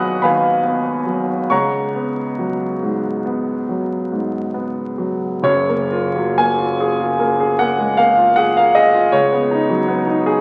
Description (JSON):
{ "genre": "classical, impressionist solo piano", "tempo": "42-54 BPM (dotted quarters)", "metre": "9/8", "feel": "rubato", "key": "F# major", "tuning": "A4 = 442 Hz", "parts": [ { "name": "clear concert grand piano", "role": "solo", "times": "0.0-10.4 s", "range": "F#1 to F#6", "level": "-17 LUFS", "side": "equal", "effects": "none" } ], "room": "wet recital hall reverb, RT60 1.7 s", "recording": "very old 78 rpm record, vinyl crackle", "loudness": "-17 LUFS", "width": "mono", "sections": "0.0-5.4 A section; 5.4-10.4 B section", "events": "none", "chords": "0.0 G#m7; 1.5 C#7sus4; 5.4 F#maj9; 9.1 C#11" }